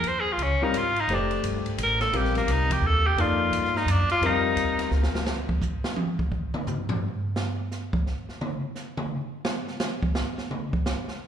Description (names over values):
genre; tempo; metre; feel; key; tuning
modal jazz; 172 BPM; 3/4; swing 64% on 8ths; unclear; A4 = 440 Hz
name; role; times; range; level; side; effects
bright tenor saxophone; melody; 0.0-4.9 s; Bb3 to C5; -25 LUFS; equal; slapback echo
upright bass; bass; 0.0-5.3 s; F1 to G2; -27 LUFS; equal; none
open jazz drum kit; drums; 0.0-11.1 s; hi-hat, kick drum, ride cymbal, snare drum, toms; -29 LUFS; right 1 dB; none
warm grand piano; accompaniment; 0.6-5.2 s; G3 to D5; -29 LUFS; left 5 dB; slapback echo
room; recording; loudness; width
light reverb, small room ambience; live gig heard through the venue's PA, club reverb; -23 LUFS; side -9 dB against mid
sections
0.0-5.3 A section; 5.3-11.3 A section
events
tenor saxophone solo 0.0-5.3; drum fill 4.9-5.3; drum solo 5.3-11.3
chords
0.0 Eb9sus4; 1.1 F9sus4; 5.3 N.C.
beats
| 0.04 0.39 0.74 | 1.09 1.44 1.78 | 2.13 2.48 2.83 | 3.18 3.53 3.88 | 4.22 4.57 4.92 | 5.27 5.62 5.97 | 6.32 6.67 7.02 | 7.37 7.71 8.06 | 8.41 8.76 9.11 | 9.46 9.81 10.16 | 10.51 10.86